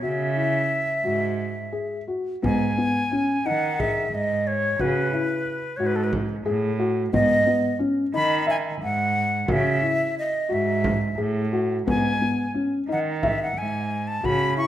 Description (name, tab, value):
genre	contemporary instrumental, chamber music in an uneven meter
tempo	178 BPM (eighths)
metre	7/8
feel	straight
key	C# minor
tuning	A4 = 440 Hz
part	breathy bright concert flute	melody	0.0-14.7 s	A4 to C#6	-25 LUFS	left 1 dB	none
part	felt-muted upright piano	arpeggios	0.0-14.7 s	B3 to E5	-26 LUFS	left 2 dB	none
part	rich cello	bass	0.0-14.5 s	G#2 to D#3	-27 LUFS	right 4 dB	none
part	frame drum	percussion	2.4-14.6 s	none	-30 LUFS	right 1 dB	none
room	moderate recital hall reverb, RT60 1.4 s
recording	none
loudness	-21 LUFS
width	side -12 dB against mid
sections	0.0-2.4 A section; 2.4-14.7 B section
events	break 1.7-2.4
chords	0.0 C#m; 2.4 G#m; 4.8 C#m7; 7.1 G#m; 9.5 C#m; 11.9 G#m